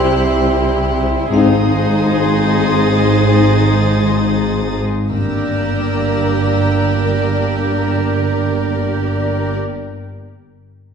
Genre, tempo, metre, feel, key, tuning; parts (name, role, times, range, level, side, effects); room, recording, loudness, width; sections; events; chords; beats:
cinematic, suspense film score; free time; A4 = 440 Hz
rich studio violin section; melody; 0.0-9.6 s; C5 to D5; -24 LUFS; left 5 dB
warm chamber violin section; second line; 0.0-9.5 s; G4 to Bb4; -22 LUFS; equal
rich chamber viola section; accompaniment; 0.0-9.6 s; Eb4 to G4; -22 LUFS; equal
rich chamber cello section; bass; 0.0-9.5 s; G2 to C3; -20 LUFS; right 2 dB
warm chamber double bass section; bass; 0.0-9.5 s; G1 to C2; -19 LUFS; right 1 dB
rich chamber violin section; texture; 0.0-8.5 s; Bb5 to A6; -29 LUFS; left 3 dB
vibraphone with hard mallets; texture; 0.0-5.1 s; D5 to F5; -30 LUFS; equal
mellow French horn section; sustained chords; 1.3-9.6 s; Bb3 to Eb4; -20 LUFS; equal
timpani; percussion; 5.1-9.6 s; G2; -27 LUFS; left 1 dB
wet scoring stage reverb, RT60 1.8 s; heard from further back in the room, nothing above 10.6 kHz; -13 LUFS; side -6 dB against mid
0.0-5.1 A section; 5.1-8.9 B section
0.0 C; 1.3 Ab; 5.1 Gm
free time